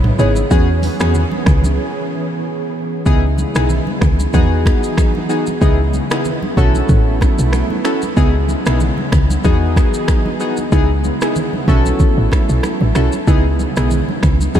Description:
afrobeats; 94 BPM; 4/4; swing 55% on 16ths; C# minor; A4 = 440 Hz
folk marimba with medium mallets; melody; 0.0-2.7 s; C#5; -28 LUFS; right 2 dB; diffuse ambient delay
warm analog pad; sustained chords; 0.0-14.6 s; C#3 to G#4; -23 LUFS; right 1 dB; chorus, tremolo
woody log drum bass; bass; 0.0-14.6 s; G#1 to E2; -16 LUFS; equal
afro-pop drum kit; drums; 0.0-14.6 s; finger snaps, hi-hat, kick drum, rim click, shaker, toms; -17 LUFS; equal
congas; percussion; 0.0-14.6 s; -24 LUFS; right 2 dB
warm analog keys; accompaniment; 0.2-14.6 s; B3 to A4; -20 LUFS; equal; chorus
light reverb, digital ambience; -13 LUFS; side -10 dB against mid
0.0-3.1 A section; 3.1-14.6 B section
break 1.8-3.1
0.0 C#m7; 0.5 E6; 3.1 C#m7; 4.3 Emaj7; 5.6 C#m7; 6.6 B9sus4; 8.2 C#m7; 9.4 Emaj7; 10.7 C#m7; 11.7 B9sus4; 13.3 C#m7

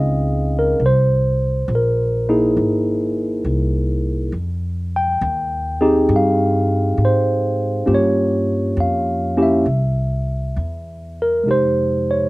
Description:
jazz ballad; 68 BPM; 4/4; swing 68% on 8ths; F minor; A4 = 441 Hz
tine electric piano; accompaniment; 0.0-12.3 s; C3 to G5; -18 LUFS; equal; overdrive
upright bass; bass; 0.0-12.3 s; G#1 to Ab2; -20 LUFS; equal
little or no reverb; recorded outdoors, with no room sound; -16 LUFS; side -20 dB against mid
0.0-11.5 A section
0.0 Dbmaj9#11; 0.8 C7alt; 4.3 Fm9; 7.9 Gm7b5; 9.7 C; 11.5 Fm9

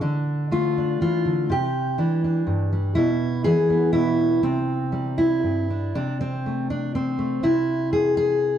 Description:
folk, solo fingerstyle acoustic guitar; 122 BPM; 3/4; rubato; C major; A4 = 440 Hz
fingerpicked steel-string acoustic guitar; solo; 0.0-8.6 s; G2 to G#4; -20 LUFS; equal; slapback echo
little or no reverb; dry, close 1970s-style studio recording; -20 LUFS; side -10 dB against mid
0.0-5.9 A section; 5.9-8.6 B section
0.0 Dm; 1.5 Cadd9; 3.0 E/B; 4.4 Csus2; 5.9 Am/C; 7.4 E/C

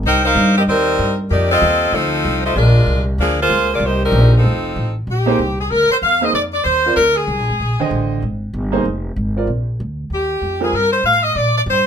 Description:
jazz, big band swing; 191 BPM; 4/4; swing 62% on 8ths; Bb mixolydian from 5.1 s; A4 = 440 Hz
upright bass; bass; 0.0-11.9 s; F1 to Bb2; -18 LUFS; equal
edgy saxophone section; melody; 0.1-8.1, 10.1-11.9 s; F3 to G5; -15 LUFS; left 1 dB
bright upright piano; accompaniment; 5.3-10.7 s; D3 to G5; -19 LUFS; right 4 dB
moderate club reverb, RT60 0.7 s; minimal, uncompressed stereo recording; -14 LUFS; side -8 dB against mid
0.0-5.1 A section; 5.1-11.9 B section
0.1 Cm7; 1.3 F7; 2.6 Bb7; 3.8 Cm7; 4.4 F7; 5.1 Bb7; 8.8 Fm; 9.5 Bb; 10.1 Eb; 11.4 Bb

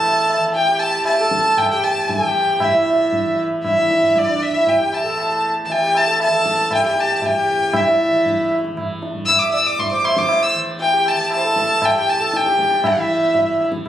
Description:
indian classical, Hindustani; 117 BPM; 5/4; straight; E raga malkauns; A4 = 441 Hz
rich violin; melody; 0.0-13.6 s; D5+20c to E6; -17 LUFS; left 1 dB
pedal harmonium; second line; 0.0-13.7 s; D4 to E5; -21 LUFS; right 2 dB
tanpura; drone; 0.0-13.9 s; E2 to E3; -31 LUFS; equal
tabla; percussion; 0.0-13.9 s; -22 LUFS; right 1 dB
moderate recital hall reverb, RT60 1.5 s; recorded on a phone in the room, club reverb, compression; -15 LUFS; side -11 dB against mid
0.0-2.6 A section; 2.6-13.9 B section

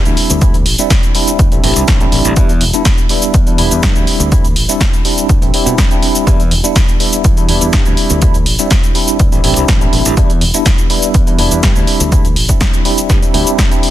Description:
filtered disco house; 123 BPM; 4/4; straight; A4 = 440 Hz
tine electric piano; accompaniment; 0.0-13.9 s; G3 to E4; -16 LUFS; equal; medium stereo tremolo, phaser, sidechain pumping
modern bright fingered electric bass; bass; 0.1-13.4 s; E1 to B2; -17 LUFS; equal; tube saturation, sidechain pumping
punchy analog drum machine; drums; 0.1-13.9 s; cabasa, hi-hat, snare drum; -16 LUFS; equal; sidechain pumping on perc, sidechain pumping on hats
electronic kick drum; drums; 0.4-13.7 s; -12 LUFS; equal
digital ambience; dense, heavily limited modern master; -9 LUFS; side -13 dB against mid
0.0-13.9 A section
0.2 D9sus4; 2.4 Em7; 4.1 D9sus4; 6.3 Em7; 8.0 D9sus4; 10.2 Em7; 11.9 D9sus4

